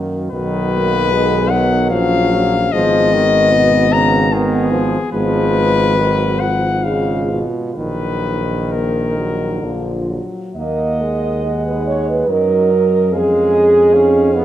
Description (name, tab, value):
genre	classical, hymn-like piece for brass band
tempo	63-77 BPM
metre	3/4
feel	rubato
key	Eb minor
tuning	A4 = 440 Hz
part	dark French horn section	second line	0.0-14.4 s	A#3 to Eb5	-18 LUFS	right 3 dB	none
part	clear trombone	accompaniment	0.0-14.4 s	Cb3 to Db4	-22 LUFS	right 2 dB	none
part	warm euphonium	accompaniment	0.0-14.4 s	D#3 to Eb4	-23 LUFS	left 2 dB	none
part	mellow tuba	bass	0.0-14.4 s	Ab1 to Gb2	-20 LUFS	equal	none
part	warm cornet	melody	0.3-14.4 s	Ab4 to Bb5	-19 LUFS	left 5 dB	none
room	wet recital hall reverb, RT60 1.7 s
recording	none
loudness	-13 LUFS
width	side -12 dB against mid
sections	0.0-10.6 A section; 10.6-14.4 B section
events	none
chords	0.3 B; 2.7 Abm; 5.1 Fdim/Ab; 7.8 Ebm/Bb; 9.6 Bb; 10.6 Ebm; 13.1 Db/F